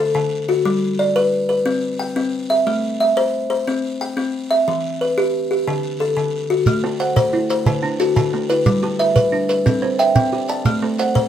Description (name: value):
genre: southern african traditional, mbira-style interlocking cycle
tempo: 120 BPM (dotted quarters)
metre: 12/8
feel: straight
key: A dorian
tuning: A4 = 441 Hz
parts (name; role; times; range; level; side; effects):
- buzzing kalimba; arpeggios; 0.0-11.3 s; D3 to A5; -17 LUFS; left 1 dB; none
- shekere; percussion; 6.7-11.3 s; none; -19 LUFS; right 3 dB; none
- buzzing kalimba; arpeggios; 6.8-11.3 s; D3 to G5; -22 LUFS; right 5 dB; tape echo
room: light reverb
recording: none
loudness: -16 LUFS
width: side -10 dB against mid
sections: 0.0-6.7 A section; 6.7-11.3 A section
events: none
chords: 0.0 D; 0.7 G; 1.7 C; 2.7 Am; 3.7 C; 4.7 Em; 5.7 D; 6.7 Am; 7.7 D; 8.7 G; 9.7 C; 10.7 Am